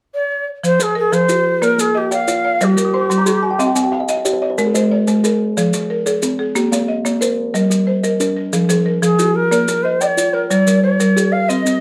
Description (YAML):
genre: southern african traditional, mbira-style interlocking cycle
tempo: 122 BPM (dotted quarters)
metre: 12/8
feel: straight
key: F equiheptatonic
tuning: A4 = 439 Hz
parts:
  - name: mellow Native American-style cedar flute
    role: melody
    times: 0.1-3.9, 9.0-11.8 s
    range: G4-33c to F5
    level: -19 LUFS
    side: equal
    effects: slapback echo
  - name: buzzing marimba with hard mallets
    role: arpeggios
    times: 0.6-11.8 s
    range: F3 to F5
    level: -20 LUFS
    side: equal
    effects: none
  - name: maracas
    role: percussion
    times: 0.6-11.8 s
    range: none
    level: -28 LUFS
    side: equal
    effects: none
  - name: kalimba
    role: arpeggios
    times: 0.8-11.8 s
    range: F3 to Eb6+29c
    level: -22 LUFS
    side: equal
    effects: none
room: moderate studio reverb, RT60 0.6 s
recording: none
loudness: -16 LUFS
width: mono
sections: 0.6-11.8 A section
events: kalimba fill 2.7-4.6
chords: 0.0 N.C.; 0.6 Fm; 1.6 Bb; 2.6 Gm; 3.6 Cm; 4.6 Ab; 5.6 Fm; 6.6 Bb; 7.5 Gm; 8.5 Fm; 9.5 Bb; 10.5 Gm